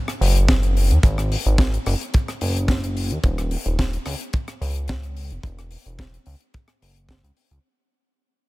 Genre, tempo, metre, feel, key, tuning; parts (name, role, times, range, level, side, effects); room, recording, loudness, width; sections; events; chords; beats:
nu-disco, nu disco; 109 BPM; 4/4; straight; A4 = 440 Hz
tight funk drum kit; drums; 0.1-7.6 s; hi-hat, rim click, snare drum; -28 LUFS; left 1 dB
chorused synth bass; bass; 0.2-7.6 s; D#1 to D#2; -20 LUFS; equal
kick drum; drums; 0.5-7.2 s; -19 LUFS; equal
little or no reverb; -19 LUFS; side -20 dB against mid
0.0-7.6 A section
drop 0.0-7.6; fade-out 0.0-7.6
0.48 | 1.03 1.58 2.13 2.69 | 3.24 3.79 4.34 4.89 | 5.44 5.99 6.54 7.09